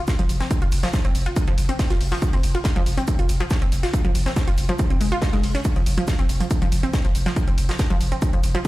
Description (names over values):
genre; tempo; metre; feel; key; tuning
driving peak-time techno; 140 BPM; 4/4; straight; unclear; A4 = 443 Hz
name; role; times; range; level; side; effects
electronic hi-hat; drums; 0.1-8.7 s; none; -35 LUFS; right 1 dB; none
electronic kick drum; drums; 0.1-8.7 s; none; -21 LUFS; equal; none
unplugged drum kit; drums; 0.1-8.7 s; hi-hat, shaker, snare drum; -34 LUFS; equal; sidechain pumping on hats, high-pass filter on hats, high-pass filter on snare, sidechain pumping on perc, high-pass filter on perc, high-pass filter on room
analog pluck; riff; 0.2-8.6 s; F3 to F4; -26 LUFS; equal; chorus, sidechain pumping, tape echo
saturated sub bass; bass; 0.2-8.5 s; F1; -24 LUFS; equal; overdrive, sidechain pumping, low-pass filter
room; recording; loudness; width
little or no reverb; played on a big sound system in a bare room, stone room reverb; -19 LUFS; side -18 dB against mid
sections
0.0-8.7 A section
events
none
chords
none